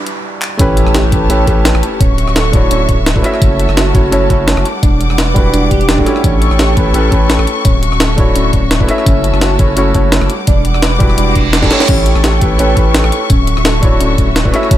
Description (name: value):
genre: liquid drum and bass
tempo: 170 BPM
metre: 4/4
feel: swing 54% on 16ths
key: unclear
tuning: A4 = 440 Hz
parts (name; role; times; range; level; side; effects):
- felt-muted upright piano; accompaniment; 0.0-14.8 s; G3 to E5; -16 LUFS; equal; tape echo
- clear studio string section; sustained chords; 0.0-14.8 s; G3 to D6; -20 LUFS; left 3 dB; sidechain pumping
- harp-like synth pluck; arpeggios; 0.0-14.8 s; C#4 to B4; -20 LUFS; right 2 dB; chorus, tape echo
- noise sweep, impact and reverse cymbal; sound effects; 0.0-2.0, 11.3-11.9 s; none; -21 LUFS; right 2 dB; none
- jungle sampler-style drum kit; drums; 0.1-14.8 s; crash cymbal, handclaps, hi-hat, rim click, snare drum; -17 LUFS; equal; none
- saturated sub bass; bass; 0.6-14.8 s; D1 to A1; -14 LUFS; equal; none
- electronic kick drum; drums; 0.6-14.8 s; none; -13 LUFS; equal; none
room: digital ambience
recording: none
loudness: -9 LUFS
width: side -13 dB against mid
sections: 0.6-14.8 A section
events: noise sweep 0.0-0.6; drum fill 0.4, 11.6; drop 0.6-14.8; impact 0.6-2.0; reverse cymbal 11.3-11.9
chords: 0.0 Em9; 0.6 A7; 2.0 Dmaj9; 3.2 F#m7; 4.7 Em9; 6.2 A7; 7.7 Dmaj9; 8.9 F#m7; 10.3 Em9; 11.9 A7; 13.3 Dmaj9